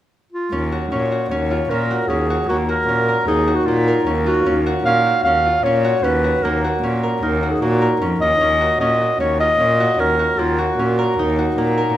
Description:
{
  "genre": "contemporary instrumental, chamber music in an uneven meter",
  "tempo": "152 BPM",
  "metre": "5/4",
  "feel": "straight",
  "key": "Eb minor",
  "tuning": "A4 = 441 Hz",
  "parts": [
    { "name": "mellow clarinet", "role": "melody", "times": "0.3-11.4 s", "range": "F4 to F5", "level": "-18 LUFS", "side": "equal", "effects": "none" },
    { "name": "concert harp", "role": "arpeggios", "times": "0.5-12.0 s", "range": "Bb3 to Bb4", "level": "-21 LUFS", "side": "equal", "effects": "none" },
    { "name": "rich cello", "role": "bass", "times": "0.5-11.9 s", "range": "Eb2 to Bb2", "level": "-21 LUFS", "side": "equal", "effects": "none" }
  ],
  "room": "moderate recital hall reverb, RT60 1.4 s",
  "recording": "minimal, uncompressed stereo recording",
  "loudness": "-15 LUFS",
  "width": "side -12 dB against mid",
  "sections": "0.5-12.0 A section",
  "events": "none",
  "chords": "0.0 N.C.; 0.5 Ebm9",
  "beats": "0.13 | 0.52 0.92 1.31 1.70 2.10 | 2.49 2.89 3.28 3.67 4.07 | 4.46 4.86 5.25 5.65 6.04 | 6.44 6.83 7.23 7.62 8.02 | 8.41 8.81 9.21 9.60 10.00 | 10.39 10.79 11.18 11.58"
}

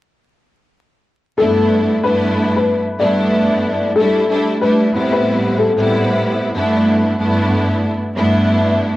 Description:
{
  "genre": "hip hop",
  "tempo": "93 BPM",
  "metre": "4/4",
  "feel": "swing 60% on 16ths",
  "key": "G major",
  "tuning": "A4 = 439 Hz",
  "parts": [
    { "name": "dark upright piano", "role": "melody", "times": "1.4-6.1 s", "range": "A4 to D5", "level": "-18 LUFS", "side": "left 4 dB", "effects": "cassette tape, tape echo" },
    { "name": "clear symphonic string section", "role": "accompaniment", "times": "1.4-9.0 s", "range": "G2 to E4", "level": "-14 LUFS", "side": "equal", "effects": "cassette tape" }
  ],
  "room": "moderate spring reverb, RT60 2.6 s",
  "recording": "home recording on cassette, vinyl crackle",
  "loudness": "-13 LUFS",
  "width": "side -16 dB against mid",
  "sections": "1.4-9.0 A section",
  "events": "none",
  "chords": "1.4 G6; 4.0 G69; 4.9 Am9; 6.5 G6",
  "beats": "| 1.39 2.03 2.68 3.32 | 3.97 4.61 5.26 5.90 | 6.55 7.19 7.84 8.48"
}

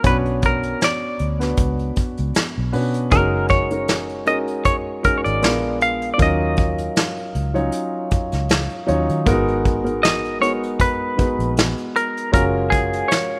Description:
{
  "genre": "lush 1970s-style soul",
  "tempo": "78 BPM",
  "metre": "4/4",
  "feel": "swing 54% on 16ths",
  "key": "F# major",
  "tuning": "A4 = 439 Hz",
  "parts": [
    { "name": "semi-hollow electric guitar", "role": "melody", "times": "0.0-13.4 s", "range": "G#4 to E#5", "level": "-23 LUFS", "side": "equal", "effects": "tremolo" },
    { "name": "warm grand piano", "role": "accompaniment", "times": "0.0-13.4 s", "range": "F#3 to C#5", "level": "-25 LUFS", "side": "equal", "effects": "none" },
    { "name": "vintage muted fingered electric bass", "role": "bass", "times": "0.0-13.0 s", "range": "F#1 to D#3", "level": "-26 LUFS", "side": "equal", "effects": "none" },
    { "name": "vintage brush drum kit", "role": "drums", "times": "0.0-13.3 s", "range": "hi-hat, kick drum, snare drum", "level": "-23 LUFS", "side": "equal", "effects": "none" }
  ],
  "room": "small room ambience",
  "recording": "rough home demo mix",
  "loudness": "-20 LUFS",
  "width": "mono",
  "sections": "0.0-13.4 A section",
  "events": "none",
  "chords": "0.0 Bmadd9; 3.1 F#69; 5.4 A#7b9; 6.2 D#m9; 9.3 G#m9; 12.3 F#maj9",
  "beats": "| 0.04 0.81 1.58 2.35 | 3.12 3.89 4.66 5.42 | 6.19 6.96 7.73 8.50 | 9.27 10.03 10.80 11.57 | 12.34 13.10"
}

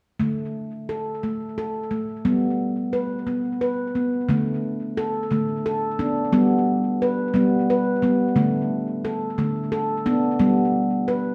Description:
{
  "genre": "world meditative, meditative tuned percussion",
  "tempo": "59 BPM (dotted quarters)",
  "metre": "6/8",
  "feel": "straight",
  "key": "unclear",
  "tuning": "A4 = 440 Hz",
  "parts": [
    { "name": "handpan", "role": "solo", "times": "0.2-11.3 s", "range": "D3 to B4", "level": "-23 LUFS", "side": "equal", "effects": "tape echo" }
  ],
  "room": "wet echo chamber reverb, RT60 1.3 s, studio reverb",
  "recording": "cassette tape",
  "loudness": "-23 LUFS",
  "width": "mono",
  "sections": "0.2-4.3 A section; 4.3-11.3 B section",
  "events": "none",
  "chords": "0.2 D5; 2.2 G; 4.3 D5; 6.3 G; 8.4 D5; 10.4 G",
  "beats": "| 0.20 1.22 | 2.24 3.27 | 4.29 5.30 | 6.33 7.34 | 8.36 9.38 | 10.40"
}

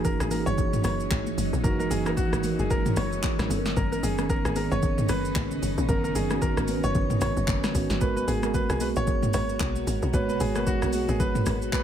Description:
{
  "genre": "amapiano",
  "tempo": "113 BPM",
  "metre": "4/4",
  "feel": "swing 58% on 16ths",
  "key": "B major",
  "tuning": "A4 = 441 Hz",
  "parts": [
    { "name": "clear grand piano", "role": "melody", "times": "0.0-11.8 s", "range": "F#4 to C#5", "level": "-31 LUFS", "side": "right 1 dB", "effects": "none" },
    { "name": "mellow tine electric piano", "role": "accompaniment", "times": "0.0-11.8 s", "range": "D#3 to C#5", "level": "-30 LUFS", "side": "right 4 dB", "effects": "slow stereo tremolo" },
    { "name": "granular cloud pad", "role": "sustained chords", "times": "0.0-11.8 s", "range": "B2 to A#4", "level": "-34 LUFS", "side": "left 1 dB", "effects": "built-in reverb, sidechain pumping" },
    { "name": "tight log drum bass", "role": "bass", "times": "0.0-11.7 s", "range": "F#1 to B1", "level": "-29 LUFS", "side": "left 1 dB", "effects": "none" },
    { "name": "deep house drum kit", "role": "drums", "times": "0.0-11.8 s", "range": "handclaps, hi-hat, kick drum, rim click, shaker, snare drum, toms", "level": "-28 LUFS", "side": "equal", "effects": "overdrive" },
    { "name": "congas", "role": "percussion", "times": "0.0-11.8 s", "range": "none", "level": "-36 LUFS", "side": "left 10 dB", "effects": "none" }
  ],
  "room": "little or no reverb",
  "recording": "none",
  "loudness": "-23 LUFS",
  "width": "side -9 dB against mid",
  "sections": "0.0-11.8 A section",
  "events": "none",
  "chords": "0.0 F#13; 3.5 Bmaj9/F#; 8.0 G#m9",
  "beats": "0.05 0.58 1.11 | 1.64 2.17 2.70 3.23 | 3.77 4.30 4.83 5.36 | 5.89 6.42 6.95 7.48 | 8.01 8.54 9.07 9.61 | 10.14 10.67 11.20 11.73"
}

